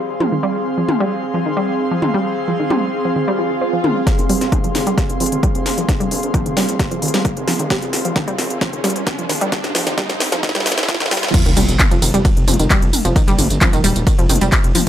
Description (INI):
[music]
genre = driving peak-time techno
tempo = 132 BPM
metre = 4/4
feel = straight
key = F minor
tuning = A4 = 440 Hz
[part]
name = airy breathy pad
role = texture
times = 0.0-11.3 s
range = C4 to C6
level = -22 LUFS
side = equal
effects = chorus, sidechain pumping
[part]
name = analog pluck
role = riff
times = 0.2-14.9 s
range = Eb3 to C4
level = -21 LUFS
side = right 1 dB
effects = chorus, vintage 12-bit sampler grit, sidechain pumping, tape echo
[part]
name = techno drum kit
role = drums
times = 0.2-14.9 s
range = crash cymbal, handclaps, hi-hat, ride cymbal, snare drum, tambourine, toms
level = -20 LUFS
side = equal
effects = sidechain pumping on hats, high-pass filter on hats, sidechain pumping on toms, high-pass filter on toms, high-pass filter on snare, sidechain pumping on cymbals, high-pass filter on cymbals, sidechain pumping on perc, high-pass filter on perc, high-pass filter on room
[part]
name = swell, riser and sub drop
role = sound effects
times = 3.4-13.2 s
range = none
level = -25 LUFS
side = right 1 dB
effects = none
[part]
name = electronic kick drum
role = drums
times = 4.1-14.6 s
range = none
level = -17 LUFS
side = equal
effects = none
[part]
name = gritty driven synth bass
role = bass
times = 4.2-14.9 s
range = Eb1 to Ab1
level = -22 LUFS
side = equal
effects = tube saturation, sidechain pumping, high-pass filter
[sound]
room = light reverb, digital ambience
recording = dry, gritty hardware recording, high-pass filter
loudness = -14 LUFS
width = side -11 dB against mid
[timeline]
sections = 0.0-4.1 A section; 4.1-11.3 B section; 11.3-14.9 C section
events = swell 3.4-4.1; build-up 4.1-11.3; drum fill 4.1-11.3; riser 4.1-11.3; filter sweep on synth arpeggio sound 4.1-11.3; filter sweep 4.1-11.3; drop 11.3-14.9; impact 11.3-13.2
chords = 0.0 Fm; 11.3 F5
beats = | 0.43 0.89 1.34 1.79 | 2.25 2.70 3.16 3.61 | 4.07 4.52 4.98 5.43 | 5.89 6.34 6.79 7.25 | 7.70 8.16 8.61 9.07 | 9.52 9.98 10.43 10.89 | 11.34 11.79 12.25 12.70 | 13.16 13.61 14.07 14.52